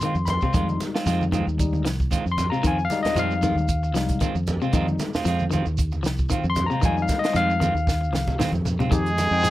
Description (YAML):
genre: afrobeat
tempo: 114 BPM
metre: 4/4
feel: swing 55% on 16ths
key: F minor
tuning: A4 = 440 Hz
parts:
  - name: barky tine electric piano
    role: accompaniment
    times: 0.0-9.5 s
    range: G3 to C6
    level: -26 LUFS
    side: left 4 dB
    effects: none
  - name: electric guitar at the edge of break-up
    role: arpeggios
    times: 0.0-9.5 s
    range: C3 to F3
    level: -28 LUFS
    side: left 4 dB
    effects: phaser
  - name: clean electric guitar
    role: stabs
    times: 0.0-8.9 s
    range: Eb3 to F4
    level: -29 LUFS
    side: right 4 dB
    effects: none
  - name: compact cocktail drum kit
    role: drums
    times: 0.0-9.5 s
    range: hi-hat, kick drum, snare drum, toms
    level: -26 LUFS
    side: equal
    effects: none
  - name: congas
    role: percussion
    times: 0.0-9.3 s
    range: none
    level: -31 LUFS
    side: right 2 dB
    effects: none
  - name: shekere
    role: percussion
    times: 0.0-9.5 s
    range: none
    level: -34 LUFS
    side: right 4 dB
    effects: none
  - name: fingered electric bass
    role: bass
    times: 0.1-9.5 s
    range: C2 to F2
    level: -25 LUFS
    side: equal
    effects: none
  - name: clear trumpet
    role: melody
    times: 8.9-9.5 s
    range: Ab4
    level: -22 LUFS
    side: right 1 dB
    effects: slapback echo
  - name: warm trombone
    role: second line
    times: 8.9-9.5 s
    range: Ab3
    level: -29 LUFS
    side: right 3 dB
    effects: none
room: little or no reverb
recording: dry, close 1970s-style studio recording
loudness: -20 LUFS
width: side -15 dB against mid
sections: 0.0-8.9 A section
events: tine electric piano solo 0.0-8.9; drum fill 7.9-8.9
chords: 0.0 Fm7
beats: 0.01 | 0.54 1.06 1.59 2.11 | 2.64 3.16 3.69 4.21 | 4.73 5.26 5.78 6.31 | 6.83 7.35 7.88 8.40 | 8.92 9.45